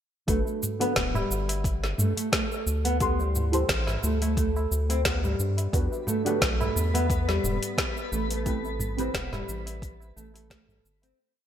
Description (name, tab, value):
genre	organic downtempo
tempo	88 BPM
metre	4/4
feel	swing 54% on 16ths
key	A dorian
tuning	A4 = 440 Hz
part	deep mellow chord stab	accompaniment	0.3-11.2 s	C4 to C6	-32 LUFS	equal	chorus, phaser, sidechain pumping, ping-pong delay
part	nylon-string guitar	arpeggios	0.3-11.2 s	G3 to C4	-31 LUFS	right 1 dB	ping-pong delay
part	round analog bass	bass	0.3-11.1 s	D1 to G2	-28 LUFS	equal	none
part	afro-pop drum kit	drums	0.3-11.2 s	cabasa, hi-hat, snare drum	-30 LUFS	equal	overdrive, gated reverb
part	electronic kick drum	drums	0.3-10.7 s	none	-30 LUFS	equal	overdrive
part	tabla	percussion	0.5-11.2 s	none	-35 LUFS	right 1 dB	none
part	twinkling granular texture	texture	6.1-11.2 s	B3 to B4	-38 LUFS	left 3 dB	built-in reverb, lush chorus
room	light reverb, digital ambience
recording	bright 1980s-style digital production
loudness	-24 LUFS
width	side -10 dB against mid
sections	0.3-11.2 groove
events	fade-out 7.6-11.2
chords	0.3 Gmaj9; 3.0 D9sus4; 5.7 Em7; 8.5 Am7